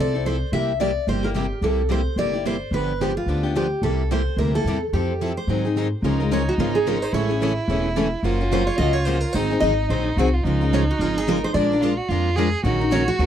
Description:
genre	acoustic string swing (jazz manouche)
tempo	218 BPM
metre	4/4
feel	swing 57% on 8ths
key	Db major from 6.0 s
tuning	A4 = 439 Hz
part	picked steel-string acoustic guitar	melody	0.0-13.3 s	F4 to E5	-25 LUFS	equal	tape echo
part	picked plugged-in steel-string acoustic guitar	accompaniment	0.0-13.3 s	C3 to Bb4	-27 LUFS	right 9 dB	none
part	picked steel-string acoustic guitar	accompaniment	0.0-13.3 s	C3 to Bb4	-26 LUFS	left 6 dB	none
part	upright bass	bass	0.0-13.3 s	E1 to Ab2	-24 LUFS	equal	none
part	warm violin	second line	6.0-13.3 s	D4 to Ab4	-25 LUFS	right 4 dB	none
room	little or no reverb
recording	dry, close 1970s-style studio recording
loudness	-19 LUFS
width	side -10 dB against mid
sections	0.0-6.0 A section; 6.0-13.3 B section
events	none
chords	0.0 Fmaj7; 0.5 C7; 2.7 G7; 3.8 C7; 4.9 Fmaj9; 5.5 Ab7; 6.0 Db6; 7.1 Amaj7; 8.2 Gbmaj7; 9.3 Ab7; 10.4 Db69; 11.5 Bb7; 12.6 Ebm7/Bb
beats	0.25 | 0.52 0.80 1.07 1.35 | 1.62 1.90 2.18 2.45 | 2.73 3.00 3.28 3.55 | 3.83 4.11 4.38 4.66 | 4.93 5.21 5.48 5.76 | 6.04 6.31 6.59 6.86 | 7.14 7.41 7.69 7.96 | 8.24 8.51 8.79 9.06 | 9.34 9.62 9.89 10.17 | 10.44 10.72 10.99 11.27 | 11.54 11.82 12.10 12.37 | 12.65 12.92 13.20

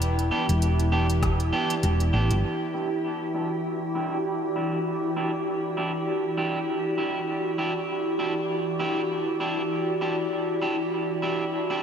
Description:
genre	ambient dub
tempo	99 BPM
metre	4/4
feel	swing 57% on 16ths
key	E minor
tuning	A4 = 436 Hz
part	soft additive organ-like pad	sustained chords	0.0-11.8 s	E3 to D5	-26 LUFS	equal	ensemble chorus, built-in reverb
part	hollow-body short-scale fingered electric bass	bass	0.0-2.4 s	E1 to A1	-23 LUFS	equal	tube saturation
part	organic electronic drum kit	drums	0.0-2.4 s	hi-hat, rim click	-37 LUFS	equal	low-pass filter on hats, small room ambience, low-pass filter on snare, dub echo
part	electric guitar at the edge of break-up	stabs	0.3-11.8 s	B3 to G4	-30 LUFS	right 2 dB	low-pass filter, dub echo
part	electronic kick drum	drums	1.2-1.4 s	none	-28 LUFS	equal	small room ambience
room	wet huge ambient reverb, RT60 4.2 s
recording	dreamy mix soaked in reverb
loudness	-24 LUFS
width	side -7 dB against mid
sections	0.0-2.4 A section; 2.4-11.8 B section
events	filter sweep on clean electric guitar 2.4-11.8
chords	0.0 G/E; 2.4 Em7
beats	| 0.01 0.62 1.23 1.83 | 2.44 3.04 3.65 4.26 | 4.86 5.47 6.08 6.68 | 7.29 7.89 8.50 9.11 | 9.71 10.32 10.92 11.53

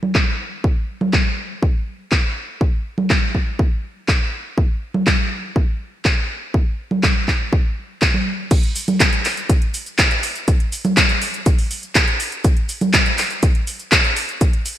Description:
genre	italo disco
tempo	122 BPM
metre	4/4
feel	straight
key	none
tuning	none
part	house drum kit	drums	0.0-14.8 s	cabasa, congas, crash cymbal, handclaps, hi-hat	-19 LUFS	equal	low-pass filter on snare, low-pass filter on perc, low-pass filter on hats, low-pass filter on cymbals, gated reverb
part	electronic kick drum	drums	0.1-14.5 s	none	-17 LUFS	equal	none
room	light reverb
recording	bright 1980s-style digital production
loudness	-16 LUFS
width	side -12 dB against mid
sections	0.0-8.5 A section; 8.5-14.8 B section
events	none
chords	none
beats	0.15 | 0.64 1.13 1.62 2.12 | 2.61 3.10 3.59 4.08 | 4.58 5.07 5.56 6.05 | 6.54 7.04 7.53 8.02 | 8.51 9.00 9.49 9.98 | 10.48 10.97 11.46 11.95 | 12.44 12.94 13.43 13.92 | 14.41

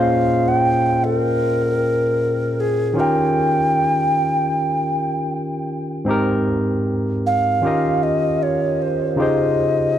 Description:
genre	reggae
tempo	77 BPM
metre	4/4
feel	swing 57% on 16ths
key	Ab major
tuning	A4 = 440 Hz
part	breathy round clay ocarina	melody	0.0-10.0 s	Ab4 to G5	-19 LUFS	right 1 dB	tape echo
part	barky tine electric piano	accompaniment	0.0-10.0 s	Ab2 to Eb5	-19 LUFS	left 1 dB	overdrive
room	light reverb, small room ambience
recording	dry, close 1970s-style studio recording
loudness	-17 LUFS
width	side -10 dB against mid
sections	0.0-6.1 A section; 6.1-10.0 B section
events	none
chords	0.0 Bbm7; 3.0 Eb7; 6.1 Abmaj7; 7.6 Eb9; 9.2 Dbmaj9#11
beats	0.63 1.41 2.19 | 2.97 3.74 4.52 5.30 | 6.08 6.86 7.63 8.41 | 9.19 9.96

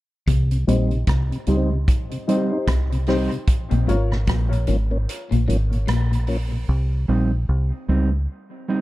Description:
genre	dub reggae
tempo	75 BPM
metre	4/4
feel	swing 59% on 16ths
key	unclear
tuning	A4 = 441 Hz
part	electric guitar at the edge of break-up	riff	0.3-6.1 s	Ab2 to Db3	-27 LUFS	left 4 dB	lush chorus, low-pass filter
part	deep dub fingered electric bass	bass	0.3-8.3 s	Ab1 to Db2	-20 LUFS	equal	none
part	vintage drum kit	drums	0.3-6.5 s	hi-hat, kick drum, rim click	-23 LUFS	equal	none
part	mellow tonewheel organ	accompaniment	0.5-6.6 s	Bb2 to Eb4	-28 LUFS	left 1 dB	slow rotary speaker, low-pass filter
part	mellow electric guitar	accompaniment	0.7-8.8 s	G3 to Eb4	-25 LUFS	right 3 dB	low-pass filter, dub echo
part	dark upright piano	stabs	0.7-4.1 s	Eb4 to Db5	-28 LUFS	left 4 dB	low-pass filter, dub echo
room	studio ambience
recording	dark, warm production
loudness	-19 LUFS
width	side -17 dB against mid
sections	0.3-6.7 A section; 6.7-8.8 B section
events	filter sweep 0.3-6.7; kick muted 5.1-6.7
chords	0.3 Cm; 3.5 Bbm; 6.7 Cm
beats	| 0.28 1.08 1.88 2.68 | 3.48 4.28 5.08 5.88 | 6.68 7.48 8.28

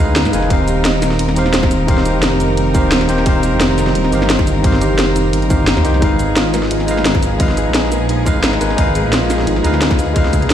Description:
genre	liquid drum and bass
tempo	174 BPM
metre	4/4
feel	swing 54% on 16ths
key	unclear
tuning	A4 = 441 Hz
part	bell-like tine electric piano	accompaniment	0.0-10.5 s	Eb3 to Bb5	-18 LUFS	left 1 dB	auto-pan, ping-pong delay
part	rich studio string section	sustained chords	0.0-10.5 s	F3 to Bb4	-24 LUFS	left 2 dB	vintage 12-bit sampler grit
part	felt-muted upright piano	arpeggios	0.0-10.5 s	C4 to F5	-21 LUFS	right 2 dB	ping-pong delay
part	dark detuned saw bass	bass	0.0-10.5 s	Eb1 to Ab2	-18 LUFS	equal	none
part	drum and bass drum kit	drums	0.2-10.5 s	cabasa, hi-hat, snare drum	-19 LUFS	equal	none
part	electronic kick drum	drums	0.5-10.4 s	none	-15 LUFS	equal	none
room	light reverb, digital ambience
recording	played on a big sound system in a bare room, stone room reverb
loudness	-12 LUFS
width	side -10 dB against mid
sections	0.0-10.5 A section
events	none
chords	0.0 Abm6; 0.5 Eb6; 6.0 Abm6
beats	0.16 | 0.51 0.85 1.19 1.54 | 1.88 2.23 2.57 2.92 | 3.26 3.61 3.95 4.30 | 4.64 4.99 5.33 5.68 | 6.02 6.37 6.71 7.06 | 7.40 7.75 8.09 8.44 | 8.78 9.12 9.47 9.81 | 10.16 10.51

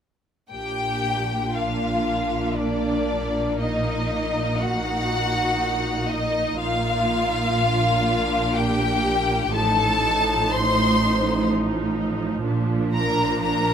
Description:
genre	classical, slow romantic movement for string orchestra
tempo	61 BPM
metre	3/4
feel	rubato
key	Bb major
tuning	A4 = 439 Hz
part	rich studio violin section	melody	0.5-13.7 s	D5 to C6	-24 LUFS	left 3 dB	none
part	rich studio violin section	second line	0.5-13.7 s	D4 to C5	-27 LUFS	left 2 dB	none
part	rich studio viola section	accompaniment	0.5-13.7 s	F3 to Eb4	-28 LUFS	right 2 dB	none
part	clear studio cello section	bass	0.5-13.7 s	A2 to Bb2	-28 LUFS	right 3 dB	none
part	warm studio double bass section	bass	0.5-13.7 s	A1 to Bb1	-28 LUFS	right 2 dB	none
room	light reverb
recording	close, detailed microphones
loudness	-20 LUFS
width	side -8 dB against mid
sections	0.5-13.7 A section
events	none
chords	0.5 Bb; 3.6 Ebm/Bb; 6.6 Bb; 9.5 F7/A; 12.5 Bb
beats	| 0.52 1.55 2.58 | 3.61 4.60 5.61 | 6.61 7.60 8.58 | 9.55 10.51 11.48 | 12.46 13.44

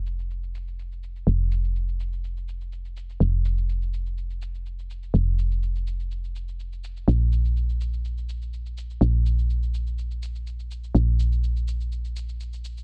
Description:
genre	afro house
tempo	124 BPM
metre	4/4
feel	straight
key	unclear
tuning	A4 = 439 Hz
part	woody FM bass	bass	0.0-12.8 s	F1 to Bb1	-27 LUFS	equal	none
part	shaker	drums	0.1-12.8 s	none	-53 LUFS	equal	overdrive, low-pass filter on perc, low-pass filter on toms, low-pass filter on snare
room	little or no reverb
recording	faint mains hum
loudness	-26 LUFS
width	mono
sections	0.0-12.8 A section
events	none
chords	none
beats	0.30 0.78 | 1.27 1.75 2.24 2.72 | 3.20 3.69 4.17 4.66 | 5.14 5.62 6.11 6.59 | 7.08 7.56 8.04 8.53 | 9.01 9.49 9.98 10.46 | 10.95 11.43 11.91 12.40

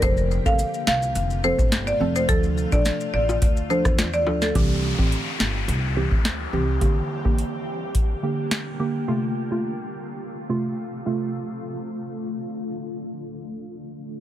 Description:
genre	dancehall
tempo	106 BPM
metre	4/4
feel	straight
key	D minor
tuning	A4 = 440 Hz
part	marimba with hard mallets	melody	0.0-4.5 s	A4 to F5	-24 LUFS	equal	ping-pong delay
part	soft round pluck	accompaniment	0.0-11.3 s	C3 to A4	-26 LUFS	right 3 dB	chorus, low-pass filter
part	granular cloud pad	sustained chords	0.1-13.6 s	C3 to G4	-32 LUFS	left 2 dB	built-in reverb, sidechain pumping, low-pass filter
part	upright bass	bass	0.0-6.8 s	F1 to E2	-26 LUFS	equal	none
part	booming analog drum machine	drums	0.0-8.7 s	hi-hat, kick drum, rim click, snare drum	-21 LUFS	equal	none
part	maracas and timbales	percussion	0.0-4.5 s	none	-34 LUFS	left 5 dB	none
part	downlifter	sound effects	4.6-9.1 s	none	-32 LUFS	left 3 dB	none
room	small room ambience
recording	none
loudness	-21 LUFS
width	side -12 dB against mid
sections	0.0-4.6 A section; 4.6-13.6 B section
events	filter sweep 4.6-13.6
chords	0.0 F; 2.3 Dm; 4.6 C; 6.8 Gm; 9.1 F; 11.3 Dm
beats	| 0.02 0.59 1.16 1.72 | 2.29 2.85 3.42 3.98 | 4.55 5.12 5.68 6.25 | 6.82 7.38 7.95 8.51 | 9.08 9.65 10.21 10.78 | 11.34 11.91 12.48 13.04

